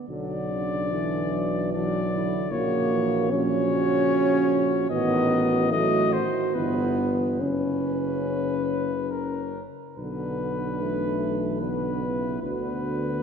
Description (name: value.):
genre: classical, hymn-like piece for brass band.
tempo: 69-77 BPM.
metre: 3/4.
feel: rubato.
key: B minor.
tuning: A4 = 440 Hz.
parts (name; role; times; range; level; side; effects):
dark trombone; accompaniment; 0.0-13.2 s; C#3 to F#3; -34 LUFS; right 3 dB; none.
mellow cornet; melody; 0.1-13.2 s; A#4 to D#5; -30 LUFS; left 6 dB; none.
dark French horn section; second line; 0.1-13.2 s; C#4 to F#4; -30 LUFS; right 8 dB; none.
dark euphonium; accompaniment; 0.1-13.2 s; E3 to C#4; -27 LUFS; equal; none.
mellow tuba; bass; 0.1-13.2 s; F#1 to D2; -30 LUFS; equal; none.
room: wet church reverb, RT60 2.8 s.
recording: minimal, uncompressed stereo recording.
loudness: -23 LUFS.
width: side -7 dB against mid.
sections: 0.1-13.2 A section.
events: none.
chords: 0.1 Bm; 2.5 F#/A#; 4.9 B7/A; 6.5 Em/G; 7.4 F#sus4; 10.0 Bm; 12.4 Bm/D.